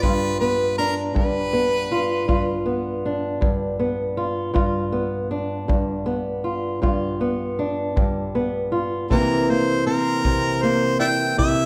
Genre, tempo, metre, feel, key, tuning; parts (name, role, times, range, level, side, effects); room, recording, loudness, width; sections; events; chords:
acoustic country blues, solo or duo; 53 BPM (dotted quarters); 12/8; straight; G mixolydian; A4 = 438 Hz
bright harmonica; melody; 0.0-11.7 s; Bb4 to G5; -25 LUFS; equal
fingerpicked old ladder-braced acoustic guitar; accompaniment; 0.0-11.7 s; G2 to F4; -24 LUFS; equal
kick drum; drums; 0.0-11.6 s; -27 LUFS; equal
moderate scoring stage reverb, RT60 1.9 s; recorded in a church or concert hall; -22 LUFS; mono
0.0-11.7 A section
0.0 G7; 9.1 C7